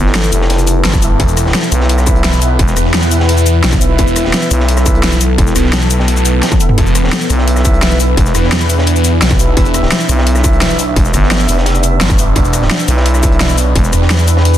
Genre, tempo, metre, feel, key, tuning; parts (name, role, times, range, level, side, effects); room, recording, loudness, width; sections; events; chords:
dark technical drum and bass; 172 BPM; 4/4; straight; A4 = 443 Hz
deep dark ambient pad; sustained chords; 0.0-14.6 s; B3 to E5; -18 LUFS; equal; chorus, built-in reverb, vintage 12-bit sampler grit, sidechain pumping
growling FM bass; bass; 0.0-13.9 s; E1 to B1; -12 LUFS; equal
crunchy breakbeat drum kit; drums; 0.1-14.6 s; hi-hat, snare drum; -25 LUFS; equal; high-pass filter on hats, high-pass filter on snare, high-pass filter on room
dubstep drum kit; drums; 0.1-14.6 s; hi-hat, rim click, shaker, snare drum, toms; -16 LUFS; left 1 dB
dark brass ensemble; stabs; 0.3-14.3 s; E4 to E5; -23 LUFS; right 1 dB; dub echo
phased detuned saw bass; bass; 0.8-14.6 s; E1 to E2; -12 LUFS; equal; phaser, overdrive
electronic kick drum; drums; 0.9-13.8 s; -14 LUFS; equal; distortion
small room ambience; dense, heavily limited modern master; -9 LUFS; side -12 dB against mid
0.0-14.6 A section
drum fill 6.4-6.8
0.0 E5